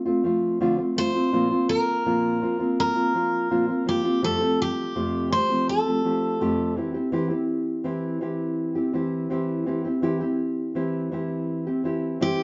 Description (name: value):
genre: acoustic pop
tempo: 83 BPM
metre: 4/4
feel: straight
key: unclear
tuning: A4 = 440 Hz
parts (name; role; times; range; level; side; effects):
- nylon-string guitar; accompaniment; 0.0-12.4 s; F2 to G4; -26 LUFS; equal; none
- picked steel-string acoustic guitar; melody; 1.0-6.7, 12.2-12.4 s; G4 to C5; -27 LUFS; equal; none
room: moderate stone room reverb, RT60 1.2 s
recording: band playing live in one room, nothing above 7.7 kHz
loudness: -25 LUFS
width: mono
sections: 0.0-12.4 A section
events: none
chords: 0.0 Dm7; 1.3 Bbsus2; 4.2 Fadd9; 6.8 C/E